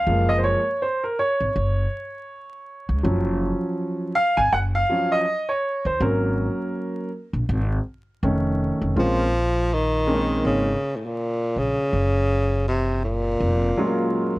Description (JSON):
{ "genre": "hip hop", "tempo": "81 BPM", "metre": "4/4", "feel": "swing 59% on 16ths", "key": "Bb minor", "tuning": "A4 = 441 Hz", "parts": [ { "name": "warm baby grand piano", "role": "accompaniment", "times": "0.0-14.4 s", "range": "Eb3 to Ab5", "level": "-22 LUFS", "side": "right 1 dB", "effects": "none" }, { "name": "upright bass", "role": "bass", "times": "0.0-14.4 s", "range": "F1 to Eb2", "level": "-24 LUFS", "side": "equal", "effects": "none" }, { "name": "breathy tenor saxophone", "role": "melody", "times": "9.0-14.4 s", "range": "A2 to F3", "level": "-23 LUFS", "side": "equal", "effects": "none" } ], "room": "light reverb", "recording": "vinyl crackle", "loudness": "-20 LUFS", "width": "side -19 dB against mid", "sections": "0.0-9.0 A section; 9.0-14.4 B section", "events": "grand piano solo 0.0-9.0", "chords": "0.1 Gbmaj7; 3.0 Ebm9/Gb; 6.0 Ab7sus4; 8.2 F7b13; 9.0 Bbm9; 11.9 Gbmaj7", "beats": "| 0.07 0.81 1.55 2.29 | 3.04 3.78 4.52 5.26 | 6.00 6.74 7.48 8.22 | 8.96 9.70 10.44 11.18 | 11.92 12.66 13.41 14.15" }